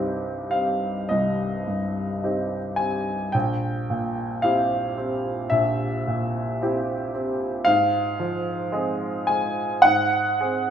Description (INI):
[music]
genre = classical, romantic nocturne for solo piano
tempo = 51-57 BPM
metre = 4/4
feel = rubato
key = C minor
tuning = A4 = 441 Hz
[part]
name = clear upright piano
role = solo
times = 0.0-10.7 s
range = Bb1 to Ab5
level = -22 LUFS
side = equal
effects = none
[sound]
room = moderate recital hall reverb, RT60 1.5 s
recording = minimal, uncompressed stereo recording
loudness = -21 LUFS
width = side -8 dB against mid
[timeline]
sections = 0.0-10.7 A section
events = none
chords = 0.0 Cm; 3.3 C7/Bb; 7.7 Fm/Ab; 9.8 Ab7